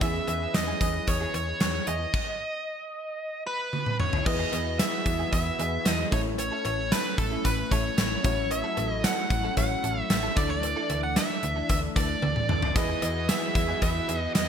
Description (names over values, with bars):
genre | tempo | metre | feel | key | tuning
1980s-style pop | 113 BPM | 4/4 | straight | E major | A4 = 440 Hz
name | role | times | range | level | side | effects
dark smooth lead guitar | melody | 0.0-14.5 s | A4 to F#5 | -30 LUFS | right 2 dB | overdrive, ping-pong delay
glassy synth bell | second line | 0.0-14.5 s | A5 to F#6 | -39 LUFS | left 1 dB | chorus, tremolo, ping-pong delay
FM electric piano | accompaniment | 0.0-14.5 s | A3 to D5 | -35 LUFS | left 2 dB | chorus, phaser
brassy analog pad | sustained chords | 0.0-14.5 s | E3 to D#5 | -36 LUFS | left 2 dB | chorus
direct-recorded clean electric guitar | riff | 0.0-14.4 s | B3 to A4 | -39 LUFS | right 6 dB | ensemble chorus
slap-like FM bass | bass | 0.0-14.5 s | A1 to E2 | -32 LUFS | equal | none
gated 80s drum kit | drums | 0.0-14.5 s | crash cymbal, hi-hat, kick drum, snare drum, tambourine, toms | -27 LUFS | equal | gated reverb
cowbell | percussion | 0.0-14.5 s | none | -42 LUFS | left 7 dB | none
overdriven electric guitar | accompaniment | 12.8-14.5 s | E3 to E4 | -38 LUFS | left 2 dB | wide subtle chorus
room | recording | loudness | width
moderate plate reverb, RT60 1.6 s | bright 1980s-style digital production | -24 LUFS | side -8 dB against mid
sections
0.0-4.3 A section; 4.3-14.5 B section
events
stop 2.1-4.3; drum fill 3.7-4.3, 12.2-12.8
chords
0.0 C#m7/E; 2.1 N.C.; 4.3 Emaj7; 6.1 A; 8.2 F#m7/A; 10.4 Dsus2; 12.8 Emaj7